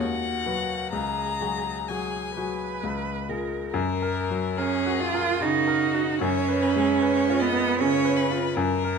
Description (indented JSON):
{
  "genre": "classical, slow romantic movement for piano trio",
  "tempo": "62-79 BPM",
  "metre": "3/4",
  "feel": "rubato",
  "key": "F# major",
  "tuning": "A4 = 440 Hz",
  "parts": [
    { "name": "rich violin", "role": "melody", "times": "0.0-9.0 s", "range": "F#4 to A#5", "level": "-30 LUFS", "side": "left 9 dB", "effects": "none" },
    { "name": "rich cello", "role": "second line", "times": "0.0-8.6 s", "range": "B3 to B4", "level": "-25 LUFS", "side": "right 7 dB", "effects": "none" },
    { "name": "clear baby grand piano", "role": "accompaniment", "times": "0.0-9.0 s", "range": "C#2 to B4", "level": "-27 LUFS", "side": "left 3 dB", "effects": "none" }
  ],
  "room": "moderate recital hall reverb, RT60 1.6 s",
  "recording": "close, detailed microphones",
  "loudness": "-22 LUFS",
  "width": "side -5 dB against mid",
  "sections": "0.0-3.7 A section; 3.7-9.0 B section",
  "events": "none",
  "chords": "0.0 B/D#; 0.9 C#sus4; 2.8 C#; 3.7 F#; 6.2 C#7/F#",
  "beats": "0.00 | 0.93 1.89 2.83 | 3.73 4.58 5.40 | 6.21 7.01 7.79 | 8.56"
}